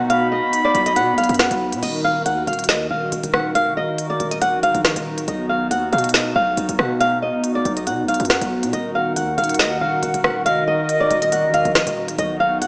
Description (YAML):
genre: hip hop, drill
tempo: 139 BPM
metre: 4/4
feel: half-time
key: Eb minor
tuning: A4 = 439 Hz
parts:
  - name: flamenco guitar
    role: melody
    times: 0.0-12.7 s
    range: D5 to F#5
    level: -23 LUFS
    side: equal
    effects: low-pass filter
  - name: silver concert flute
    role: second line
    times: 0.0-1.8, 8.9-12.7 s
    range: Eb5 to B5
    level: -24 LUFS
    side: equal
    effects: digital delay
  - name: hollow soft pad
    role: sustained chords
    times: 0.0-12.7 s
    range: Eb3 to Bb4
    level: -27 LUFS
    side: equal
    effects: chorus
  - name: hard-hitting 808-style bass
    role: bass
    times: 0.0-12.7 s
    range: D1 to B2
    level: -31 LUFS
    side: equal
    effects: none
  - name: drill drum kit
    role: drums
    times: 0.1-12.7 s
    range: crash cymbal, hi-hat, rim click, snare drum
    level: -24 LUFS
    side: equal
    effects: none
room: moderate concert hall reverb, RT60 2.4 s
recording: small speaker sound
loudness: -19 LUFS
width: mono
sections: 0.0-1.8 A section; 1.8-12.7 A section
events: none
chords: 0.0 B; 1.8 Ebm; 5.3 B; 8.7 Ebm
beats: | 0.10 0.53 0.96 1.39 | 1.83 2.26 2.69 3.12 | 3.55 3.98 4.42 4.85 | 5.28 5.71 6.14 6.57 | 7.00 7.44 7.87 8.30 | 8.73 9.16 9.60 10.03 | 10.46 10.89 11.32 11.75 | 12.19 12.62